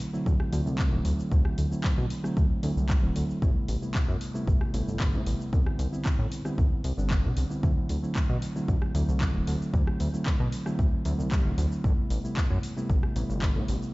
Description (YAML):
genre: nu-disco, nu disco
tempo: 114 BPM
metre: 4/4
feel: straight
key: D mixolydian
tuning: A4 = 441 Hz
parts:
  - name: mellow reed electric piano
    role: accompaniment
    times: 0.0-13.9 s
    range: C3 to E4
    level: -31 LUFS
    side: right 1 dB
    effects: sidechain pumping, tape echo
  - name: house drum kit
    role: drums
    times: 0.0-13.9 s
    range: handclaps, hi-hat, rim click, shaker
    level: -39 LUFS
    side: equal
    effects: overdrive, small room reverb
  - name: chorused synth bass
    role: bass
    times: 0.3-13.8 s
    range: D1 to C3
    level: -28 LUFS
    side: equal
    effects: none
  - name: electronic kick drum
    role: drums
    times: 0.3-13.5 s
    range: none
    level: -26 LUFS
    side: equal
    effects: overdrive, small room reverb
room: little or no reverb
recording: played on a big sound system in a bare room, stone room reverb, nothing above 7.7 kHz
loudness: -24 LUFS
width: side -22 dB against mid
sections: 0.0-13.9 A section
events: none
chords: 0.0 D7; 3.4 Am9; 5.5 Cmaj7; 7.6 D7; 11.8 Am9